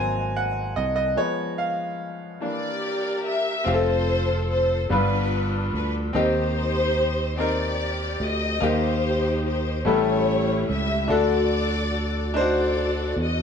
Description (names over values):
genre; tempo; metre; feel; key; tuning
slow gospel; 48 BPM (dotted quarters); 6/8; straight; unclear; A4 = 439 Hz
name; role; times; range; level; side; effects
bright upright piano; accompaniment; 0.0-13.4 s; G2 to B#5; -25 LUFS; left 2 dB; none
sustaining fretless electric bass; bass; 0.0-13.4 s; F1 to E2; -26 LUFS; right 1 dB; none
dark studio string section; melody; 2.4-13.4 s; D4 to E5; -25 LUFS; left 2 dB; none
room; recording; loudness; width
wet stone room reverb, RT60 1.3 s; band playing live in one room; -21 LUFS; side -7 dB against mid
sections
0.0-3.7 A section; 3.7-13.4 B section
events
upright piano solo 0.0-3.7; stop 1.2-3.7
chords
0.0 G#7; 1.2 Fdim; 2.4 Em7b5; 3.7 F; 4.9 G7; 6.1 Cm/Eb; 8.6 Eb; 9.9 A7; 11.1 D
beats
| 1.19 2.43 | 3.67 4.91 | 6.15 7.39 | 8.62 9.86 | 11.10 12.34